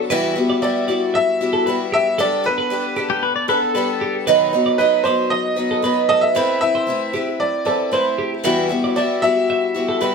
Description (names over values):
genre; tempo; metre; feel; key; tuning
acoustic pop; 115 BPM; 4/4; straight; E minor; A4 = 440 Hz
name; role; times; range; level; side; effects
picked twelve-string acoustic guitar; accompaniment; 0.0-10.1 s; E2 to B4; -19 LUFS; equal; none
twelve-string electric guitar; arpeggios; 0.1-10.1 s; G4 to E5; -23 LUFS; right 2 dB; none
bright upright piano; melody; 0.6-10.1 s; B4 to E5; -20 LUFS; equal; none
pedal steel guitar; second line; 3.1-4.2 s; G4 to D5; -21 LUFS; left 5 dB; none
room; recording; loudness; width
moderate studio reverb, RT60 0.9 s; band playing live in one room; -16 LUFS; side -5 dB against mid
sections
0.1-10.1 A section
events
none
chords
0.1 Emadd9; 2.2 Gadd9; 4.3 B; 6.4 Amadd9; 8.4 Emadd9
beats
| 0.11 0.63 1.15 1.67 | 2.19 2.71 3.23 3.75 | 4.27 4.79 5.32 5.84 | 6.36 6.88 7.40 7.92 | 8.45 8.97 9.49 10.01